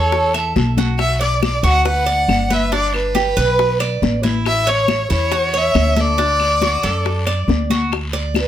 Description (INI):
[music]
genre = latin, Cuban son and guajira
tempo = 139 BPM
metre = 4/4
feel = straight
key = D major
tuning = A4 = 440 Hz
[part]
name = warm violin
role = melody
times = 0.0-8.5 s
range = A4 to F#5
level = -18 LUFS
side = equal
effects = plate reverb
[part]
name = Cuban tres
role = arpeggios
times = 0.0-8.5 s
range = D4 to E5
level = -21 LUFS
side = right 2 dB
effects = none
[part]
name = upright bass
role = bass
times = 0.0-8.5 s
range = G1 to F#2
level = -20 LUFS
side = equal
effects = none
[part]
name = bongos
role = percussion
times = 0.1-8.5 s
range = none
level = -24 LUFS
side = left 9 dB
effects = none
[part]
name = congas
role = percussion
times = 0.1-8.5 s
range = none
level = -22 LUFS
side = left 3 dB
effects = none
[part]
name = guiro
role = percussion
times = 0.1-8.5 s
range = none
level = -32 LUFS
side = left 3 dB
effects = none
[part]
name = claves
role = percussion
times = 0.3-8.5 s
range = none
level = -29 LUFS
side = left 6 dB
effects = none
[sound]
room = light reverb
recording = none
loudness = -14 LUFS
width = side -11 dB against mid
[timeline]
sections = 0.0-7.9 A section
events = drum fill 0.6-1.0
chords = 0.0 A; 1.0 Bm; 2.7 G; 4.5 A6; 6.2 D; 7.9 N.C.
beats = 0.13 0.56 | 0.99 1.43 1.86 2.29 | 2.73 3.16 3.59 4.03 | 4.46 4.89 5.32 5.75 | 6.19 6.62 7.05 7.49 | 7.92 8.35